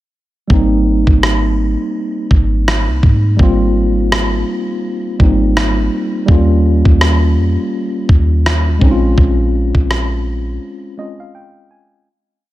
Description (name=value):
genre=contemporary R&B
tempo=83 BPM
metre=4/4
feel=swing 58% on 16ths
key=Ab major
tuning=A4 = 440 Hz
part: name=mellow tine electric piano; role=accompaniment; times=0.5-12.1 s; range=G3 to Ab5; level=-17 LUFS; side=equal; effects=fast stereo tremolo
part: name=soft 808-style bass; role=bass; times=0.5-10.6 s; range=Ab1 to Ab2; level=-14 LUFS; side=equal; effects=none
part: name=dusty soul sampler-style drum kit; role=drums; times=0.5-10.1 s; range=kick drum, rim click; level=-13 LUFS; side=equal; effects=none
room=digital ambience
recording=none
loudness=-11 LUFS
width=side -16 dB against mid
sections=0.5-12.1 verse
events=fade-out 9.2-12.1; break 10.6-12.1; tine electric piano fill 10.6-12.1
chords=0.5 Abmaj9; 6.3 Eb7; 8.8 Bbm7